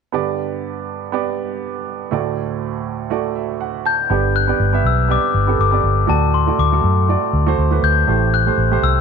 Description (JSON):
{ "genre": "pop", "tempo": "121 BPM", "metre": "4/4", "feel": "swing 56% on 16ths", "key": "G major", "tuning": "A4 = 442 Hz", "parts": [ { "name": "clear grand piano", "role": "accompaniment", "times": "0.1-9.0 s", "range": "D2 to A5", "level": "-20 LUFS", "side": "right 12 dB", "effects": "none" }, { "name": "glockenspiel with rubber mallets", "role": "melody", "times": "3.9-9.0 s", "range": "A5 to G6", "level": "-18 LUFS", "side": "left 14 dB", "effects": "slapback echo" }, { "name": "vintage muted fingered electric bass", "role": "bass", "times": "4.1-9.0 s", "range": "G1 to F#2", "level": "-17 LUFS", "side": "left 1 dB", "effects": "none" } ], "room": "light reverb, small room ambience", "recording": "1960s-style stereo with parts hard left and right", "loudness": "-15 LUFS", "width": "side -6 dB against mid", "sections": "0.1-4.1 A section; 4.1-9.0 B section", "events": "grand piano fill 3.1-4.1", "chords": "0.1 G; 2.1 D; 4.1 G; 6.1 D; 8.1 Am7" }